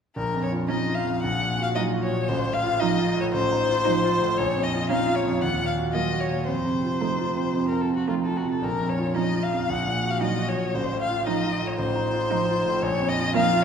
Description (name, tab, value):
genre	quick classical-period movement for piano quartet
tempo	114 BPM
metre	4/4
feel	straight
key	Bb minor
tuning	A4 = 439 Hz
part	rich violin	melody	0.2-13.6 s	F4 to Gb5	-26 LUFS	left 3 dB	none
part	bright concert grand piano	accompaniment	0.2-13.6 s	A1 to Gb4	-25 LUFS	right 1 dB	none
part	rich cello	second line	0.7-13.6 s	F3 to Gb3	-31 LUFS	right 5 dB	none
part	rich viola	accompaniment	0.7-13.6 s	A3 to Eb4	-34 LUFS	right 3 dB	none
room	wet recital hall reverb, RT60 1.6 s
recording	heard from further back in the room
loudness	-22 LUFS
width	side -7 dB against mid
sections	0.2-13.6 A section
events	none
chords	0.2 Bbm; 1.2 Ebm/Bb; 2.3 F7/A; 4.4 Bbm; 5.4 Ebm; 6.5 F; 8.6 Bbm; 9.7 Ebm/Bb; 10.7 F7/A; 12.8 Bb5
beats	| 0.16 0.70 1.23 1.76 | 2.29 2.81 3.33 3.86 | 4.38 4.90 5.42 5.94 | 6.47 7.01 7.55 8.08 | 8.62 9.16 9.69 10.22 | 10.74 11.26 11.78 12.30 | 12.82 13.34